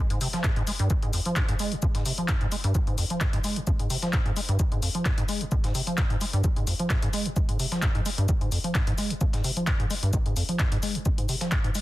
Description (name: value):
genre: acid house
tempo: 130 BPM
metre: 4/4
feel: swing 53% on 16ths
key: F minor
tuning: A4 = 440 Hz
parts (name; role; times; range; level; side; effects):
- acid bass, square; riff; 0.0-11.8 s; Eb2 to Ab3; -27 LUFS; equal; analog chorus, analog delay
- punchy analog drum machine; drums; 0.1-11.8 s; handclaps, hi-hat; -32 LUFS; left 2 dB; none
- breakbeat sampler-style drum kit; drums; 0.2-11.8 s; hi-hat, shaker, snare drum; -39 LUFS; left 2 dB; high-pass filter on perc, high-pass filter on snare, high-pass filter on hats, high-pass filter on room
- electronic kick drum; drums; 0.4-11.6 s; none; -27 LUFS; equal; none
room: digital ambience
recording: dense, heavily limited modern master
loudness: -23 LUFS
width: side -17 dB against mid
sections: 0.0-11.8 A section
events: filter sweep on acid bass 0.0-11.8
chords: none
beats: 0.44 0.90 1.36 | 1.83 2.29 2.75 3.21 | 3.67 4.13 4.59 5.06 | 5.52 5.98 6.44 6.90 | 7.37 7.83 8.29 8.75 | 9.21 9.67 10.13 10.60 | 11.06 11.52